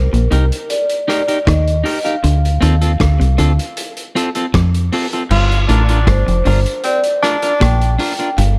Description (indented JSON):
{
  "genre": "roots reggae",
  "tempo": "78 BPM",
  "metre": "4/4",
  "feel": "straight",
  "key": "G minor",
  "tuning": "A4 = 438 Hz",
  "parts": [
    { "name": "vibraphone with soft mallets", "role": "melody", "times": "0.0-8.6 s", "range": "Bb4 to G5", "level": "-22 LUFS", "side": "equal", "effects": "tape echo" },
    { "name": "electric guitar through a small old amp", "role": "riff", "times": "0.0-8.6 s", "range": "F2 to F3", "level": "-27 LUFS", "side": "equal", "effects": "none" },
    { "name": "deep dub fingered electric bass", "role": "bass", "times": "0.0-8.6 s", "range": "F1 to F2", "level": "-15 LUFS", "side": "equal", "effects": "none" },
    { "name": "vintage drum kit", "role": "drums", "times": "0.1-8.6 s", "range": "crash cymbal, hi-hat, kick drum, rim click", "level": "-24 LUFS", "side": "equal", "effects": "none" },
    { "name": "electric guitar at the edge of break-up", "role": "accompaniment", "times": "0.3-8.3 s", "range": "C4 to Bb4", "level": "-24 LUFS", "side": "equal", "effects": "tape echo" },
    { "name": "clear tenor saxophone", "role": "second line", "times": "5.3-8.0 s", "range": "C4 to F4", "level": "-23 LUFS", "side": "equal", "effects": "tape echo" }
  ],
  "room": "light reverb, studio reverb",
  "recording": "none",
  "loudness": "-15 LUFS",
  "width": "mono",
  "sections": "0.0-5.3 A section; 5.3-8.6 B section",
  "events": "none",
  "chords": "0.0 Cm7; 2.2 Dm7; 5.3 Gm7",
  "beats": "0.70 1.47 | 2.24 3.00 3.77 4.54 | 5.31 6.08 6.84 7.61 | 8.38"
}